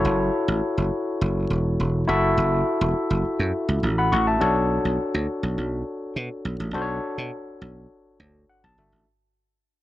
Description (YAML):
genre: early-eighties boogie funk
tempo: 103 BPM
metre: 4/4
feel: straight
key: B minor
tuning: A4 = 440 Hz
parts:
  - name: overdriven tine electric piano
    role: accompaniment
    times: 0.0-9.1 s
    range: D4 to C#6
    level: -24 LUFS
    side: left 2 dB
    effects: none
  - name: dry thumbed slap bass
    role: bass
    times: 0.0-9.0 s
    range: E1 to B2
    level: -24 LUFS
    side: right 1 dB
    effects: none
room: light reverb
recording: none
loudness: -21 LUFS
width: side -15 dB against mid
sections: 0.0-4.4 A section; 4.4-9.1 B section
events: fade-out 4.4-9.1; tine electric piano fill 8.2-9.1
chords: 0.0 F#m7; 4.4 Bm7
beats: 0.33 0.92 1.50 | 2.08 2.66 3.25 3.83 | 4.41 4.99 5.58 6.16 | 6.74 7.32 7.91 8.49